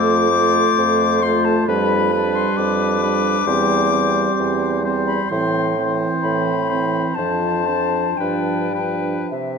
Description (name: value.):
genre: classical, slow romantic movement for wind quintet.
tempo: 51-68 BPM.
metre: 4/4.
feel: rubato.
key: unclear.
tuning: A4 = 440 Hz.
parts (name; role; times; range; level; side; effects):
concert flute; melody; 0.0-9.6 s; E5 to D6; -21 LUFS; left 10 dB; none.
clear oboe; second line; 0.0-9.3 s; B4 to C5; -25 LUFS; left 4 dB; none.
dark French horn; accompaniment; 0.0-9.3 s; E3 to A3; -24 LUFS; equal; none.
warm clarinet; accompaniment; 0.0-9.3 s; C4 to F4; -26 LUFS; right 7 dB; none.
warm bassoon; bass; 0.0-9.6 s; E2 to C3; -21 LUFS; right 4 dB; none.
room: moderate concert hall reverb, RT60 2.0 s.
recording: dark, warm production.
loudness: -16 LUFS.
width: side -5 dB against mid.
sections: 0.0-9.6 A section.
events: none.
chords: 0.0 F; 1.7 G7/F; 3.5 C/E; 5.3 Am; 7.2 Dm7/F; 8.2 G7.